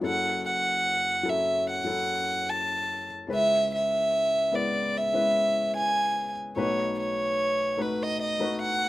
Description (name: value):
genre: acoustic folk-pop ballad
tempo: 73 BPM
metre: 4/4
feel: straight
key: unclear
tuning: A4 = 439 Hz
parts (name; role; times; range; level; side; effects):
- felt-muted upright piano; accompaniment; 0.0-8.9 s; F#1 to B4; -32 LUFS; left 3 dB; none
- warm violin; melody; 0.1-8.9 s; B4 to A5; -25 LUFS; right 1 dB; none
room: light reverb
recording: rough home demo mix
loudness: -24 LUFS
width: side -16 dB against mid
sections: 0.0-8.9 A section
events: none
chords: 0.0 F#m7; 3.3 C#m7; 6.6 B7